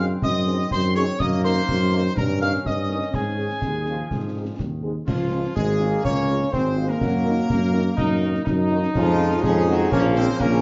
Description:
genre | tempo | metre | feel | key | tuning
military-style march for wind band | 124 BPM | 2/4 | straight | Db major | A4 = 439 Hz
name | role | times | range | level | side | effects
clear trumpet section | melody | 0.0-10.6 s | F4 to F5 | -32 LUFS | equal | none
bright piccolo | second line | 0.0-4.6 s | Ab5 to F6 | -30 LUFS | equal | none
mellow French horn section | accompaniment | 0.0-10.6 s | Db3 to Bb4 | -32 LUFS | equal | none
clear trombone section | sustained chords | 0.0-10.6 s | Eb3 to Eb4 | -31 LUFS | equal | none
mellow tuba | bass | 0.0-10.6 s | Ab1 to Ab2 | -26 LUFS | equal | none
concert snare drum, concert bass drum and clash cymbals | drums | 0.2-10.6 s | none | -31 LUFS | equal | none
mellow euphonium | second line | 5.1-10.6 s | F3 to Db4 | -26 LUFS | equal | none
room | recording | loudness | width
moderate large studio reverb, RT60 1.0 s | dark, warm production, nothing above 7.5 kHz | -22 LUFS | mono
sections
0.0-5.1 A section; 5.1-10.6 B section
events
none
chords
0.0 Ab7/Gb; 1.2 Ebm/Gb; 2.2 Eb7/G; 3.1 Absus4; 4.1 Ab; 5.1 Db; 7.0 Ebm/Gb; 8.9 Db/F; 9.9 Bbm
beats
| 0.23 0.71 | 1.20 1.68 | 2.17 2.65 | 3.14 3.62 | 4.11 4.59 | 5.08 5.56 | 6.05 6.53 | 7.01 7.50 | 7.98 8.47 | 8.95 9.43 | 9.92 10.40

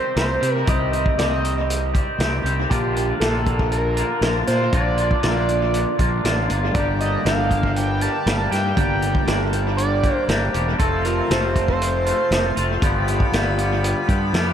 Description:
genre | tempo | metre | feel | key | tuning
psychedelic rock | 119 BPM | 4/4 | straight | unclear | A4 = 440 Hz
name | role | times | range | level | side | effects
overdriven synth lead | melody | 0.0-12.8 s | G4 to A5 | -24 LUFS | right 2 dB | distortion, chorus, dub echo
twangy electric guitar | riff | 0.0-14.5 s | F2 to G4 | -23 LUFS | left 1 dB | harmonic tremolo, double-tracked left and right, dub echo
fuzz fingered electric bass | bass | 0.2-14.5 s | E1 to C3 | -23 LUFS | equal | overdrive
vintage drum kit | drums | 0.2-14.5 s | hi-hat, kick drum, snare drum | -24 LUFS | equal | dub echo
hand-pumped harmonium | sustained chords | 6.7-14.5 s | G4 to C6 | -33 LUFS | right 4 dB | none
room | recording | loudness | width
light reverb | echo-heavy mix | -18 LUFS | side -9 dB against mid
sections
0.0-14.5 A section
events
none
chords
0.0 Cm; 2.7 Bb; 6.8 Gm; 10.8 F; 12.8 G7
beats
0.17 | 0.67 1.18 1.69 2.20 | 2.70 3.21 3.72 4.22 | 4.73 5.24 5.74 6.25 | 6.75 7.26 7.76 8.27 | 8.77 9.28 9.78 10.29 | 10.79 11.30 11.80 12.31 | 12.81 13.32 13.82 14.33

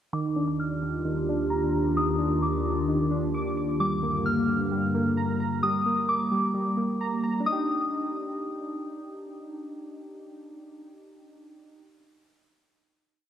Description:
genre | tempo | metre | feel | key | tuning
hip hop, atmospheric cloud-rap | 131 BPM | 4/4 | half-time | Eb major | A4 = 438 Hz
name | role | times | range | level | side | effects
soft synth bell | melody | 0.1-8.8 s | D6 to F6 | -30 LUFS | left 1 dB | chorus, phaser, low-pass filter, digital delay
warbly tape-like pad | sustained chords | 0.7-5.6 s | Eb2 to G4 | -27 LUFS | left 1 dB | chorus, built-in reverb, low-pass filter
warbly lo-fi synth keys | arpeggios | 0.1-11.9 s | Eb3 to D6 | -29 LUFS | right 1 dB | chorus, low-pass filter, digital delay
room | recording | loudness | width
moderate lush hall reverb, RT60 2.6 s | none | -24 LUFS | side -9 dB against mid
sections
0.1-7.5 breakdown; 7.5-11.1 final chord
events
filter sweep 0.1-7.5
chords
0.1 Ebmaj7; 3.8 Gm7; 7.5 Ebmaj7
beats
| 0.14 0.59 1.05 1.51 | 1.97 2.42 2.88 3.34 | 3.80 4.26 4.71 5.17 | 5.63 6.09 6.55 7.00 | 7.46 7.92 8.38 8.84 | 9.29 9.75 10.21 10.67

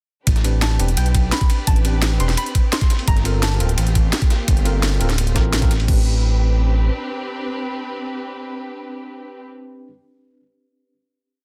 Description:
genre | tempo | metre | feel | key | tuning
liquid drum and bass | 171 BPM | 4/4 | straight | A minor | A4 = 440 Hz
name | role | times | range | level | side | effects
dark studio string section | sustained chords | 0.3-9.5 s | Bb3 to B4 | -33 LUFS | equal | vintage 12-bit sampler grit, sidechain pumping
smooth synth bass | bass | 0.3-6.9 s | D1 to B1 | -20 LUFS | equal | none
drum and bass drum kit | drums | 0.3-6.0 s | crash cymbal, hi-hat, snare drum | -27 LUFS | equal | overdrive
dusty soul sampler-style drum kit | drums | 0.3-5.9 s | ride cymbal, snare drum | -32 LUFS | equal | overdrive, high-pass filter on cymbals, high-pass filter on snare, high-pass filter on room
electronic kick drum | drums | 0.3-6.0 s | none | -19 LUFS | equal | overdrive
tine electric piano | accompaniment | 0.4-9.9 s | C4 to B4 | -33 LUFS | equal | digital delay
soft round pluck | melody | 0.6-4.8 s | G5 to C6 | -32 LUFS | equal | chorus, cassette tape, digital delay
room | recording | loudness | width
digital ambience | dense, heavily limited modern master | -19 LUFS | mono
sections
0.3-5.9 drop; 5.9-8.7 final chord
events
drop 0.3-5.9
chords
0.3 Am11; 2.9 Gm11; 5.9 Am11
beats
| 0.27 0.62 0.97 1.32 | 1.67 2.02 2.38 2.73 | 3.08 3.43 3.78 4.13 | 4.48 4.83 5.18 5.53 | 5.88 6.24 6.59 6.94 | 7.29 7.64 7.99 8.34

